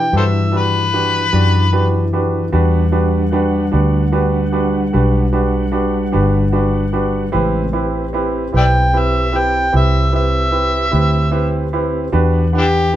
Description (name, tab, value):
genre	blues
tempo	50 BPM (dotted quarters)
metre	12/8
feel	straight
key	E minor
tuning	A4 = 443 Hz
part	overdriven harmonica	melody	0.0-12.9 s	D4 to G5	-17 LUFS	left 1 dB	none
part	clear upright piano	accompaniment	0.0-13.0 s	C4 to F#5	-20 LUFS	right 2 dB	none
part	mellow tonewheel organ	sustained chords	0.0-13.0 s	C#3 to F#5	-22 LUFS	left 1 dB	slow rotary speaker, chorus vibrato
part	vintage muted fingered electric bass	bass	0.0-13.0 s	G1 to B2	-16 LUFS	equal	none
room	moderate studio reverb, RT60 0.5 s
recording	band playing live in one room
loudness	-13 LUFS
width	side -12 dB against mid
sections	0.0-13.0 A section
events	none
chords	0.0 Em9; 7.3 Am9; 12.1 Em9